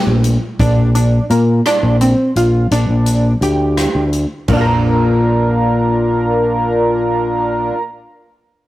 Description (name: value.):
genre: progressive instrumental, band music in an uneven meter.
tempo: 170 BPM (eighths).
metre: 11/8.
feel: straight.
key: Bb major.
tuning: A4 = 441 Hz.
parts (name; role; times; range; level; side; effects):
tight sequenced synth; arpeggios; 0.0-7.8 s; Bb3 to Bb4; -16 LUFS; equal; chorus.
overdriven fingered electric bass; bass; 0.1-7.7 s; Bb1 to Bb2; -14 LUFS; equal; none.
swinging big-band drum kit; drums; 0.2-4.7 s; crash cymbal, hi-hat, kick drum, rim click, toms; -22 LUFS; equal; none.
room: light reverb.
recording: rough rehearsal-room recording.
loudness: -12 LUFS.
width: side -16 dB against mid.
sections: 0.0-4.5 A section; 4.5-8.4 B section.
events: none.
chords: 0.0 N.C.; 0.6 Bbadd9; 2.7 Bb6; 4.5 Bb.